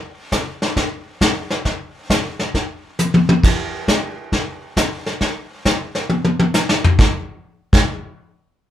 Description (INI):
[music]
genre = country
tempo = 135 BPM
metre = 4/4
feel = swing 67% on 8ths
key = none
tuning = none
[part]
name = vintage brush drum kit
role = drums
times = 0.3-7.8 s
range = brushed snare drum, crash cymbal, hi-hat, kick drum, snare drum, toms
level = -16 LUFS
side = equal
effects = none
[sound]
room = moderate studio ambience, RT60 0.4 s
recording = band playing live in one room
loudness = -16 LUFS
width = side -11 dB against mid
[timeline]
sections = 0.0-3.4 A section; 3.4-7.0 B section; 7.0-8.7 C section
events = drum fill 3.0-3.4, 6.1-7.0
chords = none